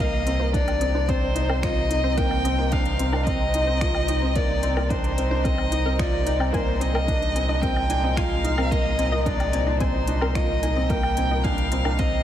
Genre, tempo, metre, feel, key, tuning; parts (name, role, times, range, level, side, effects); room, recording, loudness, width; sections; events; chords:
piano and strings electronica; 110 BPM; 4/4; straight; C minor; A4 = 440 Hz
dark violin; melody; 0.0-12.2 s; C5 to G5; -27 LUFS; equal; tape echo
dark string quartet; sustained chords; 0.0-12.2 s; Bb2 to Eb4; -32 LUFS; equal; sidechain pumping
wide unison pluck; arpeggios; 0.0-11.9 s; Bb4 to Ab5; -34 LUFS; equal; vintage 12-bit sampler grit, sidechain pumping, tape echo
felt-muted upright piano; riff; 0.0-12.2 s; Bb3 to F4; -28 LUFS; left 1 dB; tape echo
warm sub bass; bass; 0.0-12.2 s; C2; -25 LUFS; equal; tube saturation, sidechain pumping
organic electronic drum kit; drums; 0.3-12.1 s; finger snaps, hi-hat, woodblock; -36 LUFS; left 2 dB; studio reverb
electronic kick drum; drums; 0.5-12.1 s; -27 LUFS; equal; overdrive, studio reverb
moderate lush hall reverb, RT60 2.7 s; dreamy mix soaked in reverb; -20 LUFS; side -11 dB against mid
0.0-12.2 A section
0.0 Cm7; 6.5 Absus2/C